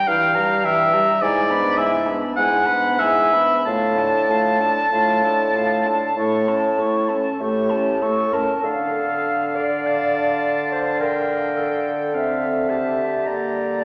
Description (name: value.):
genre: classical, slow romantic movement for wind quintet.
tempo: 45-55 BPM.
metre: 4/4.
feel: rubato.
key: D minor.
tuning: A4 = 439 Hz.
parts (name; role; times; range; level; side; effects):
silver concert flute; melody; 0.0-13.8 s; D5 to C#6; -28 LUFS; equal; none.
clear oboe; second line; 0.0-13.8 s; D5 to Bb5; -23 LUFS; equal; none.
dark clarinet; accompaniment; 0.0-13.8 s; D4 to D5; -30 LUFS; equal; none.
mellow French horn; accompaniment; 0.0-13.8 s; E3 to D4; -30 LUFS; equal; none.
mellow bassoon; bass; 0.1-13.8 s; G2 to D3; -26 LUFS; equal; none.
room: wet scoring stage reverb, RT60 1.6 s.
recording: none.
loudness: -20 LUFS.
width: mono.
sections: 0.0-8.6 A section; 8.6-13.8 B section.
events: none.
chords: 0.0 Edim/G; 1.2 E7/G#; 3.7 Dm/A; 6.2 A; 8.6 Dm; 13.3 Gm/D.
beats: 0.08 1.22 2.38 | 3.67 4.93 6.17 7.41 | 8.64 9.87 11.02 12.14 | 13.26.